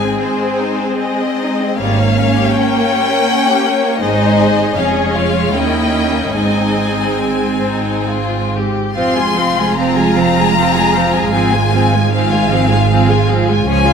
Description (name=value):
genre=classical, slow romantic movement for string orchestra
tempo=68-82 BPM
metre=3/4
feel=rubato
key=Ab major, F minor from 9.0 s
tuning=A4 = 438 Hz
part: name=rich chamber violin section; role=melody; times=0.0-13.9 s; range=C5 to C6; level=-19 LUFS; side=left 5 dB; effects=none
part: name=rich chamber violin section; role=second line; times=0.0-13.9 s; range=G3 to Ab5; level=-18 LUFS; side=left 4 dB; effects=none
part: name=clear studio viola section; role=accompaniment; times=0.0-13.9 s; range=F3 to F4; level=-17 LUFS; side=right 1 dB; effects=none
part: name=rich chamber cello section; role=bass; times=0.0-13.9 s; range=Db2 to Ab2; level=-20 LUFS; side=right 4 dB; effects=none
part: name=warm chamber double bass section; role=bass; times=0.0-13.9 s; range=F1 to Eb2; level=-20 LUFS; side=right 4 dB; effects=none
room=moderate scoring stage reverb, RT60 2.1 s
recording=none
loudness=-12 LUFS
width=side -6 dB against mid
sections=0.0-9.0 A section; 9.0-13.9 B section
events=none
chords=0.0 Ab; 1.8 Gdim/Ab; 4.0 Ab; 4.8 Db/F; 5.5 Eb7b9; 6.4 Ab; 9.0 Fm; 11.3 Fm/Ab